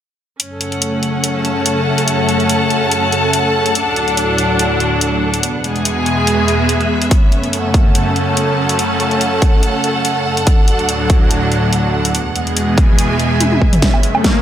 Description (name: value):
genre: heavy wobble dubstep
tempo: 143 BPM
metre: 4/4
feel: swing 54% on 16ths, half-time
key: F# minor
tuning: A4 = 441 Hz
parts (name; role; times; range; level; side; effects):
- supersaw pad; sustained chords; 0.4-14.4 s; D2 to A3; -17 LUFS; equal; phaser, sidechain pumping, low-pass filter
- dubstep drum kit; drums; 0.4-14.3 s; hi-hat, snare drum, toms, woodblock; -18 LUFS; equal; none
- rich studio string section; texture; 0.4-14.4 s; B3 to A5; -17 LUFS; equal; sidechain pumping
- electronic kick drum; drums; 7.1-14.3 s; none; -12 LUFS; equal; overdrive
- riser; sound effects; 14.0-14.4 s; none; -20 LUFS; left 5 dB; none
room: moderate lush hall reverb, RT60 2.1 s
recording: none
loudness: -12 LUFS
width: side -10 dB against mid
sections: 0.4-13.8 A section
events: filter sweep on supersaw synth 0.4-13.8; drum fill 13.4-13.8, 13.8-14.4; riser 14.0-14.4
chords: 0.4 F#m; 3.8 D; 5.4 E; 7.1 F#m; 10.5 D; 12.1 E; 13.8 F#m